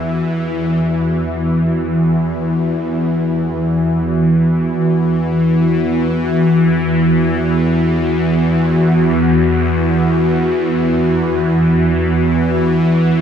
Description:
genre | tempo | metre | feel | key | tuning
dark ambient drone | free time | none | none | unclear | A4 = 440 Hz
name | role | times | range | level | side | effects
sweeping resonant pad | sustained chords | 0.0-13.2 s | E3 to F#4 | -15 LUFS | equal | chorus, shimmer reverb
bowed-like drone | drone | 0.0-13.2 s | E2 to E3 | -17 LUFS | left 1 dB | built-in reverb, phaser
wind-like tuned noise texture | texture | 0.0-0.9 s | E5 | -35 LUFS | equal | none
room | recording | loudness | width
moderate huge ambient reverb, RT60 8.9 s | in a vast, echoing space | -13 LUFS | side -8 dB against mid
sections
0.8-13.2 A section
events
none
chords
0.0 E5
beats
free time

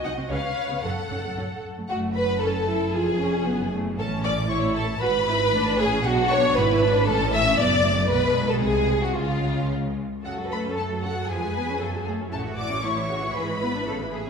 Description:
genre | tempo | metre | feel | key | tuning
quick classical-period movement for string orchestra | 116 BPM | 2/4 | straight | F# minor | A4 = 440 Hz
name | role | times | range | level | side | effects
rich studio violin section | melody | 0.0-14.1 s | E#5 to E6 | -31 LUFS | left 3 dB | none
rich studio violin section | second line | 0.0-14.1 s | E#4 to E5 | -24 LUFS | equal | none
rich studio viola section | accompaniment | 0.0-14.3 s | C#3 to B4 | -30 LUFS | equal | none
clear symphonic double bass section | bass | 0.0-14.3 s | E#1 to F#2 | -30 LUFS | right 2 dB | none
rich studio cello section | bass | 0.1-14.3 s | E#2 to B4 | -29 LUFS | right 2 dB | none
room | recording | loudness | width
wet recital hall reverb, RT60 1.8 s | recorded in a church or concert hall | -21 LUFS | side -6 dB against mid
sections
0.0-1.9 A section; 1.9-10.2 B section; 10.2-14.3 B section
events
none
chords
0.3 C#7; 0.8 F#m; 2.9 C#/E#; 3.5 F#m; 4.0 A; 5.0 E/G#; 5.5 A; 6.0 Bm; 6.6 E/G#; 7.1 A; 7.6 D/F#; 8.1 G#m/B; 8.6 G#7/B#; 9.2 C#; 10.2 F#m; 11.3 C#7/E#; 11.8 F#m; 12.3 A; 13.4 E7/G#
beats
0.30 | 0.83 1.36 | 1.89 2.41 | 2.94 3.46 | 3.98 4.50 | 5.01 5.53 | 6.05 6.56 | 7.07 7.59 | 8.11 8.63 | 9.16 9.70 | 10.24 10.77 | 11.29 11.81 | 12.32 12.84 | 13.35 13.87

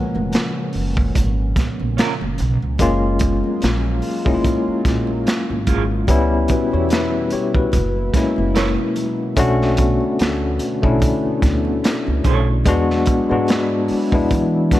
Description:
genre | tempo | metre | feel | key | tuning
R&B, neo-soul | 73 BPM | 4/4 | swing 55% on 16ths | unclear | A4 = 437 Hz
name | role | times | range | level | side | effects
tine electric piano | accompaniment | 0.0-14.8 s | E#3 to G#5 | -20 LUFS | left 3 dB | fast tremolo
warm analog pad | sustained chords | 0.0-14.8 s | A#2 to E#4 | -28 LUFS | right 3 dB | chorus
congas | percussion | 0.1-14.8 s | none | -33 LUFS | right 12 dB | none
upright bass | bass | 0.2-14.8 s | E#1 to E3 | -21 LUFS | right 1 dB | none
crunchy breakbeat drum kit | drums | 0.3-14.8 s | hi-hat, kick drum, snare drum | -20 LUFS | right 1 dB | none
electric guitar through a small old amp | second line | 2.0-12.5 s | A#3 to C#5 | -26 LUFS | right 7 dB | tremolo
room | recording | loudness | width
light reverb | dark, warm production | -16 LUFS | side -14 dB against mid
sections
0.0-2.8 A section; 2.8-14.8 B section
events
tine electric piano solo 0.0-2.8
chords
0.0 F#maj7; 2.8 F#maj9; 6.1 C#m7b5; 7.7 F#7; 9.4 Bm9; 12.7 E9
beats
0.33 1.15 1.97 | 2.79 3.62 4.44 5.26 | 6.08 6.90 7.72 8.55 | 9.37 10.19 11.01 11.84 | 12.66 13.48 14.30

